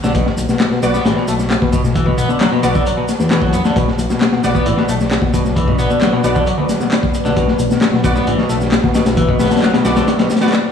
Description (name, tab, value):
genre	breakbeat, breaks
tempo	133 BPM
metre	4/4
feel	straight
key	B minor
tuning	A4 = 440 Hz
part	electric guitar at the edge of break-up	riff	0.0-10.3 s	B2 to B3	-20 LUFS	left 1 dB	dub echo
part	orchestra-hit-like synth stab	stabs	0.0-10.5 s	B3 to D5	-21 LUFS	equal	built-in reverb, dub echo
part	fat analog bass	bass	0.0-10.0 s	A1 to B2	-18 LUFS	left 2 dB	none
part	crunchy breakbeat drum kit	drums	0.0-10.6 s	hi-hat, kick drum, snare drum	-16 LUFS	left 2 dB	none
part	electronic shaker and handclaps	drums	0.0-10.6 s	none	-26 LUFS	equal	overdrive
part	deep dark ambient pad	sustained chords	4.8-10.7 s	F#3 to E5	-21 LUFS	left 1 dB	chorus, built-in reverb, sidechain pumping
room	moderate studio reverb, RT60 0.6 s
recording	played on a big sound system in a bare room, stone room reverb, vinyl crackle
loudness	-12 LUFS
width	side -7 dB against mid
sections	0.0-10.7 A section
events	none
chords	0.0 Bm